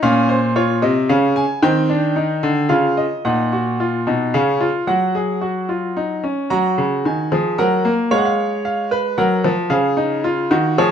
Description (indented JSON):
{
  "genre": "classical, baroque-style 3-part fugue for grand piano",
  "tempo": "112 BPM",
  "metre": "3/4",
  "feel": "straight",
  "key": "F# major from 3.3 s",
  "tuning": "A4 = 440 Hz",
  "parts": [
    { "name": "bright grand piano", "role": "solo", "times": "0.0-10.9 s", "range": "Bb2 to A#5", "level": "-15 LUFS", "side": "equal", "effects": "none" }
  ],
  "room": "light reverb",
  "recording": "close, detailed microphones",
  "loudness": "-16 LUFS",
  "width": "side -8 dB against mid",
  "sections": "0.0-3.3 A section; 3.3-6.5 B section; 6.5-10.9 C section",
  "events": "none",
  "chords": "0.0 Bbm; 1.1 Db; 1.6 Cmadd9; 2.7 Dbadd9; 3.3 D#m/A#; 4.3 C#; 4.9 F#5; 6.5 F#; 8.1 Fdim/Ab; 9.2 F#; 9.7 C#"
}